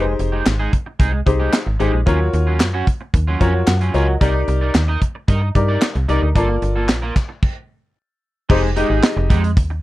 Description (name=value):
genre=early-eighties boogie funk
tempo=112 BPM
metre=4/4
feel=straight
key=F dorian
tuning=A4 = 439 Hz
part: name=clear concert grand piano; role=accompaniment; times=0.0-9.3 s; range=Eb4 to Bb5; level=-21 LUFS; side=left 3 dB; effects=none
part: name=electric guitar at the edge of break-up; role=riff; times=0.0-9.7 s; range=Gb3 to Eb5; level=-25 LUFS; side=right 4 dB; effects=analog chorus
part: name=slap-like FM bass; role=bass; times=0.0-9.8 s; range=F1 to G2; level=-18 LUFS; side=equal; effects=none
part: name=modern studio drum kit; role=drums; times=0.2-9.7 s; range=crash cymbal, handclaps, hi-hat, kick drum, snare drum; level=-17 LUFS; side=equal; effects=vintage 12-bit sampler grit
part: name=group handclap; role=percussion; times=0.5-7.3 s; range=none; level=-30 LUFS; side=left 5 dB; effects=none
room=little or no reverb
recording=dry, close 1970s-style studio recording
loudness=-15 LUFS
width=side -16 dB against mid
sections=0.0-8.5 A section; 8.5-9.8 B section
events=grand piano fill 3.1-4.2; stop 7.4-8.5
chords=0.0 Fm9; 2.1 Ebm9; 4.2 Cm9; 6.4 Gm9; 8.5 Fm9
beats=0.46 1.00 1.53 | 2.07 2.60 3.14 3.68 | 4.21 4.75 5.28 5.82 | 6.36 6.89 7.43 7.96 | 8.50 9.03 9.57